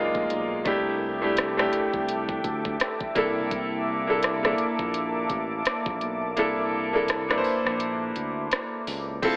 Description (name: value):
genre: contemporary R&B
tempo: 84 BPM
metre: 4/4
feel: swing 58% on 16ths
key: unclear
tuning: A4 = 440 Hz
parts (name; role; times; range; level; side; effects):
- clear baby grand piano; accompaniment; 0.0-9.4 s; Ab3 to C5; -28 LUFS; equal; none
- deep dark ambient pad; sustained chords; 0.0-9.4 s; Bb3 to E6; -33 LUFS; equal; chorus, built-in reverb, sidechain pumping
- smooth synth bass; bass; 0.0-9.4 s; F1 to D2; -38 LUFS; equal; none
- smooth R&B drum kit; drums; 0.1-9.4 s; crash cymbal, hi-hat, kick drum, rim click; -32 LUFS; equal; none
room: moderate lush hall reverb, RT60 2.4 s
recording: AM radio sound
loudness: -26 LUFS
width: mono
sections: 0.0-9.2 A section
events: kick muted 6.4-9.2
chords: 0.0 Gbmaj13; 0.7 C69; 3.2 C13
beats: | 0.66 1.37 2.08 2.80 | 3.51 4.23 4.94 5.66 | 6.37 7.08 7.80 8.51 | 9.23